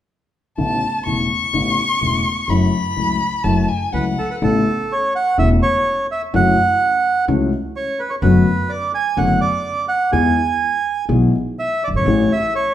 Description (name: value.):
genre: tango.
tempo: 126 BPM.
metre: 4/4.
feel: rubato.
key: A major.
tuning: A4 = 435 Hz.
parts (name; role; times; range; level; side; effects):
warm violin; second line; 0.6-4.4 s; F#5 to C#6; -20 LUFS; left 3 dB; none.
dark concert grand piano; accompaniment; 0.6-12.3 s; E1 to G#4; -19 LUFS; left 3 dB; none.
upright bass; bass; 0.6-12.3 s; E1 to E2; -22 LUFS; right 2 dB; none.
bandoneon; melody; 3.9-12.7 s; A4 to G#5; -18 LUFS; right 3 dB; none.
room: wet large studio reverb, RT60 1.1 s.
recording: band playing live in one room.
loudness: -15 LUFS.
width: side -11 dB against mid.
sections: 0.6-4.4 A section; 4.4-12.7 B section.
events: none.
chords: 0.6 Aadd9; 2.5 F#m7; 4.4 Aadd9; 6.3 F#m7; 8.2 D6/F#; 10.1 E; 12.1 Amaj7.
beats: | 0.58 1.06 1.54 2.02 | 2.49 2.97 3.45 3.93 | 4.42 4.90 5.38 5.86 | 6.33 6.81 7.28 7.75 | 8.23 8.70 9.18 9.65 | 10.13 10.61 11.09 11.58 | 12.06 12.54.